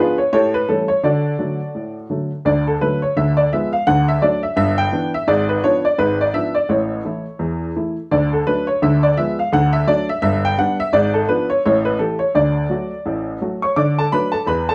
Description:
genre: jazz, stride piano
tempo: 170 BPM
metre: 4/4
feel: swing 60% on 8ths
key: D major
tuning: A4 = 440 Hz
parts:
  - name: clear upright piano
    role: solo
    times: 0.0-14.7 s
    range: G1 to D6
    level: -18 LUFS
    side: equal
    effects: none
room: moderate studio reverb, RT60 0.6 s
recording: heard from further back in the room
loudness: -18 LUFS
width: mono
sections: 0.0-2.5 A section; 2.5-13.8 A section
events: none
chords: 0.3 A7; 1.0 D; 3.2 Ddim7; 3.9 D; 4.6 G6; 5.3 G#dim7; 6.7 A; 8.1 D; 8.8 Ddim7; 9.5 D; 10.2 G; 10.9 G#dim7; 11.7 A5; 12.4 D

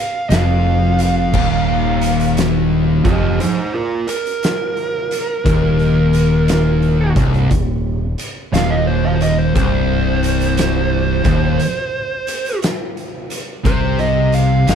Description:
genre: stoner and doom metal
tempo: 58 BPM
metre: 4/4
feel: swing 66% on 8ths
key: C minor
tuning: A4 = 440 Hz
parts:
  - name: fuzz lead guitar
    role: melody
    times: 0.0-14.8 s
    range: Eb4 to G5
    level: -20 LUFS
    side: right 4 dB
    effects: distortion, slapback echo
  - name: fuzz guitar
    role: riff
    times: 0.3-14.8 s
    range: C2 to C3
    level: -23 LUFS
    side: left 3 dB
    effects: distortion
  - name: thick fuzz guitar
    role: riff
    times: 0.3-14.8 s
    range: C2 to C3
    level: -20 LUFS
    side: left 11 dB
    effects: distortion
  - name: thick fuzz guitar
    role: riff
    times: 0.3-14.8 s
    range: C2 to C3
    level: -19 LUFS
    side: right 6 dB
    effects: distortion
  - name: overdriven fingered electric bass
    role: bass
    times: 0.3-14.8 s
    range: C1 to C2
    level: -20 LUFS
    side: left 1 dB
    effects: none
  - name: oversized low-tuned drum kit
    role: drums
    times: 0.3-14.8 s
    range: crash cymbal, hi-hat, kick drum, snare drum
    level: -22 LUFS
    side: equal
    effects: none
room: little or no reverb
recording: none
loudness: -14 LUFS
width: side -8 dB against mid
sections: 0.0-14.8 A section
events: lead electric guitar solo 0.0-14.8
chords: 0.0 F5; 1.3 Cm

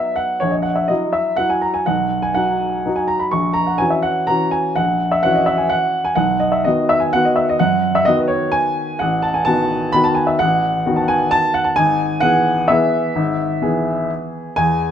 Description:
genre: classical, piano waltz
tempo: 119-138 BPM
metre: 3/4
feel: rubato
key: B major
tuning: A4 = 439 Hz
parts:
  - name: warm upright piano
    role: solo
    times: 0.0-14.9 s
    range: G#1 to C#6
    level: -15 LUFS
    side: equal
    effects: none
room: moderate recital hall reverb, RT60 1.6 s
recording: close, detailed microphones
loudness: -15 LUFS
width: side -9 dB against mid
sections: 0.0-14.9 A section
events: none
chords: 0.4 F#7/A#; 1.9 B; 3.3 F#7/A#; 6.2 B; 9.0 B7/A; 11.8 E/G#

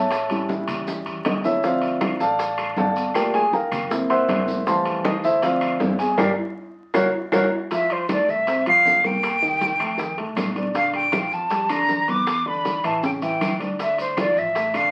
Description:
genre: Afro-Cuban jazz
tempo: 158 BPM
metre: 4/4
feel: straight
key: F major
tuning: A4 = 441 Hz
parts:
  - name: dark baby grand piano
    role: accompaniment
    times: 0.0-14.9 s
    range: C#3 to C6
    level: -25 LUFS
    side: equal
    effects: none
  - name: upright bass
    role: bass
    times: 0.0-14.9 s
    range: F1 to F2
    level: -42 LUFS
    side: equal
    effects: none
  - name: bongos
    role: percussion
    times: 0.1-14.9 s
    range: none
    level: -34 LUFS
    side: equal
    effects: none
  - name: congas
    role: percussion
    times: 0.1-14.9 s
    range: none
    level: -31 LUFS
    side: equal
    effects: none
  - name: maracas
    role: percussion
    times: 0.1-14.9 s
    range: none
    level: -46 LUFS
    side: equal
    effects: none
  - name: timbales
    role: percussion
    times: 0.1-14.9 s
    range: none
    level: -33 LUFS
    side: equal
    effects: none
  - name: claves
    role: percussion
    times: 2.0-14.9 s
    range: none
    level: -36 LUFS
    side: equal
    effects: none
  - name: breathy concert flute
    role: melody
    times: 7.7-14.9 s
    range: C5 to D6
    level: -22 LUFS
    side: equal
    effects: none
room: wet studio ambience, RT60 0.5 s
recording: very old 78 rpm record, vinyl crackle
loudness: -22 LUFS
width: mono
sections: 0.0-7.7 A section; 7.7-14.9 B section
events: grand piano solo 0.0-7.7; drum fill 0.5-1.6, 7.1-7.7; band accent 6.2-7.7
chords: 0.1 A7; 1.6 Dm7; 3.2 Gm7; 3.9 Gb7#11; 4.7 Fmaj7; 5.4 Dm7; 6.2 Gm; 6.9 Gb; 7.7 Fmaj7; 9.2 Cm7; 10.0 F6; 10.8 Bb6; 12.3 E5; 13.0 A7; 13.8 Dmadd9

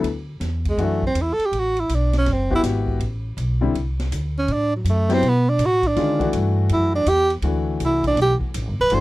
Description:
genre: modal jazz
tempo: 162 BPM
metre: 4/4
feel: swing 65% on 8ths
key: D mixolydian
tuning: A4 = 440 Hz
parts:
  - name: warm baby grand piano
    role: accompaniment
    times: 0.0-9.0 s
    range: D3 to G4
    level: -24 LUFS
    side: left 5 dB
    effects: none
  - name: upright bass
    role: bass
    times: 0.0-9.0 s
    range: D1 to D3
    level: -22 LUFS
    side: equal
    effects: none
  - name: swinging big-band drum kit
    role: drums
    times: 0.0-9.0 s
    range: hi-hat, kick drum, ride cymbal, snare drum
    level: -32 LUFS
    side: equal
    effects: none
  - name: clear tenor saxophone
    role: melody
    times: 0.7-9.0 s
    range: F#3 to C5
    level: -19 LUFS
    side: right 2 dB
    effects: none
room: little or no reverb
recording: none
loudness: -18 LUFS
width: side -18 dB against mid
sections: 0.0-9.0 A section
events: tenor saxophone solo 0.0-9.0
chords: 0.0 D69; 6.0 Csus2 (rootless)

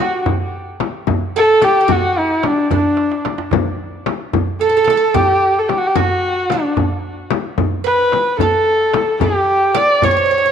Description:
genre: Persian modal ensemble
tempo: 74 BPM (dotted quarters)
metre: 6/8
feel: straight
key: D dastgah homayun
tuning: A4 = 439 Hz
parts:
  - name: dark kamancheh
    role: melody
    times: 0.0-10.5 s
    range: D4 to D5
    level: -14 LUFS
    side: equal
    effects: tape echo
  - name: oud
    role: second line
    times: 0.0-10.5 s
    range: D4 to D5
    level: -23 LUFS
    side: right 9 dB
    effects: none
  - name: frame drum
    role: percussion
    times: 0.3-10.1 s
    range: none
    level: -21 LUFS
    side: left 10 dB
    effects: none
  - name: tombak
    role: percussion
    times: 0.3-10.1 s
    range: none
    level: -23 LUFS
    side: right 3 dB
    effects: none
room: wet echo chamber reverb, RT60 1.3 s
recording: 1960s-style stereo with parts hard left and right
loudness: -13 LUFS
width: side -8 dB against mid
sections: 0.0-3.5 A section; 3.5-10.5 B section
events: drum fill 3.0-3.5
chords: none

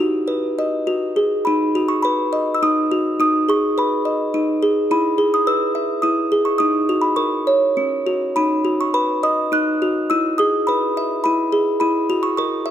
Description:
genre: children's music, lullaby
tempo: 105 BPM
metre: 3/4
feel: rubato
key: B major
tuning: A4 = 439 Hz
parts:
  - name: music box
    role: solo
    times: 0.0-12.7 s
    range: C#4 to F#6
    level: -16 LUFS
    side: equal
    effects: none
room: moderate concert hall reverb, RT60 2.1 s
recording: none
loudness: -16 LUFS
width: side -10 dB against mid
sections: 0.0-1.5 A section; 1.5-12.7 B section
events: none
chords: 0.0 B; 0.9 F#sus2; 1.5 B; 3.2 G#m; 4.9 E; 6.6 D#m; 7.2 F#; 8.4 B; 10.1 E; 11.8 F#7sus4

